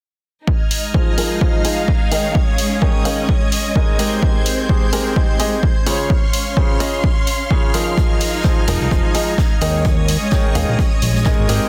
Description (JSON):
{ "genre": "piano house", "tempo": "128 BPM", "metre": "4/4", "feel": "swing 59% on 16ths", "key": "F minor", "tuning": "A4 = 440 Hz", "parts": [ { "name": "string machine, violins", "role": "sustained chords", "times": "0.5-11.7 s", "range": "C5 to Ab6", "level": "-29 LUFS", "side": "equal", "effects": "ensemble chorus, sidechain pumping" }, { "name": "electronic kick drum", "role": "drums", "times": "0.5-11.4 s", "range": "none", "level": "-19 LUFS", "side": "equal", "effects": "none" }, { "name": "rich studio string section", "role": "texture", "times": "0.5-11.7 s", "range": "Ab3 to C6", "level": "-27 LUFS", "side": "equal", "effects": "sidechain pumping" }, { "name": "electronic hi-hat", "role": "drums", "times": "0.7-11.6 s", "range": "none", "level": "-26 LUFS", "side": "equal", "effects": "none" }, { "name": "bright concert grand piano", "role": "riff", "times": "0.9-11.7 s", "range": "Db3 to F5", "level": "-24 LUFS", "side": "equal", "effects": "sidechain pumping, low-pass filter, dub echo" }, { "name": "loose indie drum kit", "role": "drums", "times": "8.0-11.6 s", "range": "hi-hat, snare drum", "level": "-36 LUFS", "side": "equal", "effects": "sidechain pumping on hats, high-pass filter on hats, high-pass filter on snare, high-pass filter on room" }, { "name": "fat analog bass", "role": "bass", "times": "8.7-11.6 s", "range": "Eb1 to Eb2", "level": "-21 LUFS", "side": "equal", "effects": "sidechain pumping" } ], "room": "small room ambience", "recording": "dense, heavily limited modern master", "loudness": "-17 LUFS", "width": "mono", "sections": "0.5-11.7 A section", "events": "filter sweep on grand piano 0.5-11.7", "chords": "0.5 Fm7; 2.1 Eb7sus4; 4.0 Abmaj7; 5.9 Dbmaj7; 8.0 Fm7; 9.6 Eb7sus4", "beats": "| 0.47 0.94 1.41 1.88 | 2.35 2.82 3.29 3.76 | 4.22 4.69 5.16 5.63 | 6.10 6.57 7.04 7.51 | 7.97 8.44 8.91 9.38 | 9.85 10.32 10.79 11.26" }